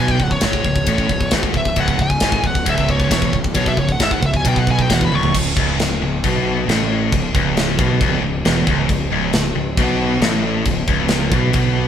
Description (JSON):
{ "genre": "heavy metal", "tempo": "135 BPM", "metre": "4/4", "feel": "straight", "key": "C# minor", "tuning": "A4 = 441 Hz", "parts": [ { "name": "high-gain lead guitar", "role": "melody", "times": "0.0-5.4 s", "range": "C#5 to C#6", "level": "-21 LUFS", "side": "left 1 dB", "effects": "distortion" }, { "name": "high-gain distorted guitar", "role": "riff", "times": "0.0-11.9 s", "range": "C#2 to B2", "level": "-22 LUFS", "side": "left 7 dB", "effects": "distortion" }, { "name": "sludgy distorted guitar", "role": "riff", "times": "0.0-11.9 s", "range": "C#2 to B2", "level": "-22 LUFS", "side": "right 7 dB", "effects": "overdrive" }, { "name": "fuzz fingered electric bass", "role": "bass", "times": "0.0-11.9 s", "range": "C#1 to B1", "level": "-22 LUFS", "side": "equal", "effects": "overdrive" }, { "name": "tight metal drum kit", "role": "drums", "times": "0.1-11.6 s", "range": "crash cymbal, kick drum, ride cymbal, snare drum, toms", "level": "-19 LUFS", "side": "equal", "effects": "none" } ], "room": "moderate stone room reverb, RT60 1.0 s", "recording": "band playing live in one room", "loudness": "-15 LUFS", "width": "side -9 dB against mid", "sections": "0.0-5.3 A section; 5.3-11.9 B section", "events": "lead electric guitar solo 0.0-5.3; drum fill 5.1", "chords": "0.0 C#m; 5.3 N.C." }